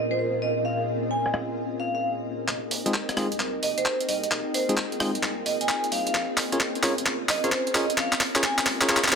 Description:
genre	UK garage, two-step garage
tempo	131 BPM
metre	4/4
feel	swing 65% on 16ths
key	F minor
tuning	A4 = 436 Hz
part	vibraphone with hard mallets	melody	0.0-9.2 s	C5 to Ab5	-28 LUFS	right 1 dB	low-pass filter, ping-pong delay
part	soft string machine	sustained chords	0.0-9.2 s	Bb2 to Ab4	-32 LUFS	left 1 dB	ensemble chorus
part	granular cloud pad	texture	0.0-9.2 s	F4 to Ab5	-33 LUFS	equal	built-in reverb
part	breakbeat sampler-style drum kit	drums	1.3-9.2 s	handclaps, hi-hat, rim click	-25 LUFS	equal	low-pass filter on snare, low-pass filter on hats
part	soft dub sub bass	bass	2.5-9.1 s	F1 to F2	-45 LUFS	left 1 dB	tube saturation, high-pass filter
part	bell-like tine electric piano	stabs	2.9-9.2 s	Ab3 to Db5	-28 LUFS	equal	ping-pong delay
room	moderate plate reverb, RT60 1.5 s, digital ambience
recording	low-pass filter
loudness	-23 LUFS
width	side -6 dB against mid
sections	0.0-2.5 A section; 2.5-9.2 B section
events	build-up 2.5-9.2; drum fill 2.5-9.2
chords	0.0 Bbm7; 2.5 Fm7; 6.1 Bbm7

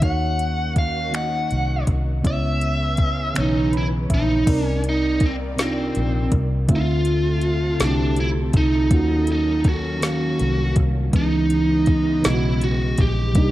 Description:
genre	slow six-eight R&B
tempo	54 BPM (dotted quarters)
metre	6/8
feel	straight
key	unclear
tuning	A4 = 440 Hz
part	biting lead guitar	melody	0.0-13.5 s	C4 to Gb5	-23 LUFS	right 1 dB	overdrive, slapback echo
part	mellow FM electric piano	accompaniment	0.0-13.5 s	C3 to Cb6	-24 LUFS	right 1 dB	chorus
part	warm studio string section	sustained chords	0.0-13.5 s	C3 to D5	-33 LUFS	left 1 dB	none
part	vintage muted fingered electric bass	bass	0.0-13.5 s	Bb1 to Eb2	-23 LUFS	equal	none
part	smooth R&B drum kit	drums	0.0-13.5 s	crash cymbal, finger snaps, hi-hat, kick drum, snare drum	-20 LUFS	equal	none
room	little or no reverb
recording	dark, warm production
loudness	-18 LUFS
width	side -15 dB against mid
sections	0.0-4.5 A section; 4.5-13.5 B section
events	FM electric piano fill 3.4-4.5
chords	0.0 Ebm7; 2.2 Dbm7; 4.5 Cm9; 6.7 Dm9; 8.9 Ebm9; 11.1 Dbm9

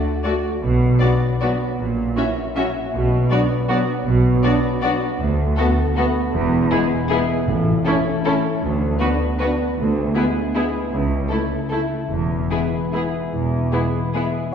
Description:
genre	classical, orchestral ballroom waltz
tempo	139-171 BPM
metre	3/4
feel	rubato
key	unclear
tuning	A4 = 440 Hz
part	concert harp	arpeggios	0.0-14.5 s	A2 to E5	-28 LUFS	left 4 dB	none
part	muted chamber violin section	melody	0.2-14.2 s	G#4 to E5	-30 LUFS	left 3 dB	none
part	muted chamber violin section	second line	0.2-14.2 s	E4 to F#4	-28 LUFS	left 2 dB	none
part	muted studio viola section	accompaniment	0.3-14.2 s	A3 to C#4	-26 LUFS	right 1 dB	none
part	mellow French horn section	sustained chords	0.3-14.3 s	F#3 to F#4	-27 LUFS	equal	none
part	muted chamber cello section	bass	0.6-13.7 s	C#2 to B2	-24 LUFS	right 2 dB	none
part	muted chamber double bass section	bass	0.6-13.7 s	E1 to D2	-23 LUFS	equal	none
part	timpani	percussion	7.5-8.0 s	A2	-27 LUFS	left 1 dB	none
room	wet concert hall reverb, RT60 2.0 s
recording	heard from further back in the room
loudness	-17 LUFS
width	side -7 dB against mid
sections	0.0-14.5 A section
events	none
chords	0.0 D; 0.6 Bm; 1.8 F#7/A#; 2.9 Bm; 5.2 Bm7/D; 6.3 E; 7.5 A; 8.6 Bm/D; 9.8 E7/D; 10.9 A/C#; 12.1 E

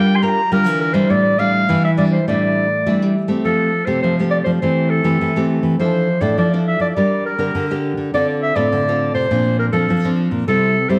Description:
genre	samba and choro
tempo	102 BPM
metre	4/4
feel	straight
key	F major from 3.4 s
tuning	A4 = 438 Hz
part	warm clarinet	melody	0.0-11.0 s	A4 to C6	-21 LUFS	equal	slapback echo
part	nylon-string guitar	accompaniment	0.0-11.0 s	A2 to Bb4	-22 LUFS	equal	none
part	nylon-string guitar	bass	0.0-11.0 s	A2 to A3	-22 LUFS	equal	none
room	moderate large studio reverb, RT60 1.2 s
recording	none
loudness	-17 LUFS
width	mono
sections	0.0-3.4 A section; 3.4-11.0 B section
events	none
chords	0.0 Gm7; 1.1 A7sus4; 3.4 Fadd9; 4.6 Am7/E; 5.8 Dmadd9; 7.0 Gm; 8.1 Dm7; 9.3 Bbadd9; 10.5 C

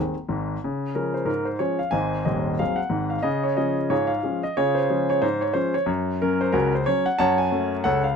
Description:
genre	ragtime piano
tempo	91 BPM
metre	2/4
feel	swing 58% on 16ths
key	Db major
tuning	A4 = 440 Hz
part	warm concert grand piano	solo	0.0-8.2 s	Eb1 to A5	-21 LUFS	equal	none
room	light reverb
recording	none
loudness	-21 LUFS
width	side -6 dB against mid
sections	0.6-8.2 A section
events	none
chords	0.0 Ab; 0.6 Db; 1.9 Ab7; 3.3 Db; 5.9 Gb5; 7.2 Gbm

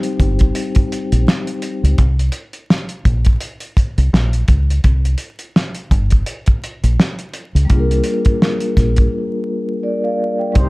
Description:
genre	hip hop, boom-bap hip-hop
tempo	84 BPM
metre	4/4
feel	swing 57% on 16ths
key	C minor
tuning	A4 = 440 Hz
part	vibraphone with soft mallets	accompaniment	0.0-2.0, 7.7-10.7 s	G3 to G5	-19 LUFS	left 1 dB	high-pass filter, low-pass filter
part	cloth-damped thuddy drum kit	drums	0.0-10.7 s	hi-hat, kick drum, snare drum	-15 LUFS	equal	none
part	deep dub fingered electric bass	bass	0.2-10.7 s	G1 to Db2	-15 LUFS	equal	none
part	dark trumpet section	stabs	10.6-10.7 s	G3 to C5	-26 LUFS	right 1 dB	high-pass filter, low-pass filter
room	little or no reverb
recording	dark, warm production, vinyl crackle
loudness	-14 LUFS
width	side -22 dB against mid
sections	0.0-10.6 A section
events	break 9.1-10.6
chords	0.0 Cm; 2.0 Bbmadd9; 4.8 C5; 7.7 Gm7

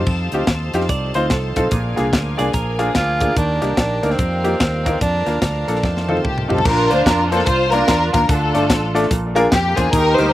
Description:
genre	uptempo gospel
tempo	146 BPM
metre	4/4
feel	swing 63% on 8ths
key	Bb major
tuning	A4 = 440 Hz
part	bright studio string section	sustained chords	0.0-6.6 s	Bb4 to Bb5	-30 LUFS	left 3 dB	none
part	percussive tonewheel organ	sustained chords	0.0-6.6 s	D3 to A4	-29 LUFS	right 3 dB	slow rotary speaker
part	fingered electric bass	bass	0.0-10.3 s	G1 to F2	-22 LUFS	equal	none
part	tight funk drum kit	drums	0.1-10.3 s	crash cymbal, hi-hat, kick drum, snare drum, splash cymbal, toms	-20 LUFS	equal	none
part	clear baby grand piano	accompaniment	0.3-10.3 s	Bb2 to F5	-21 LUFS	left 1 dB	slapback echo
part	clean electric guitar	second line	0.9-3.3 s	Ab4 to D5	-27 LUFS	right 5 dB	slapback echo
part	breathy tenor saxophone	melody	3.0-6.2 s	C4 to F4	-22 LUFS	right 2 dB	slapback echo
part	warm studio string section	melody	6.2-10.3 s	D4 to C5	-17 LUFS	equal	slapback echo
room	little or no reverb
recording	recorded outdoors, with no room sound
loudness	-15 LUFS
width	side -14 dB against mid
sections	0.0-6.7 A section; 6.7-10.3 B section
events	drum fill 5.8-6.7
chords	0.0 F7; 1.7 Bb7; 3.4 Ebmaj7; 4.2 F9sus4; 5.0 Bb; 5.8 F7; 6.7 Bb; 8.3 Dm; 9.1 Bb7

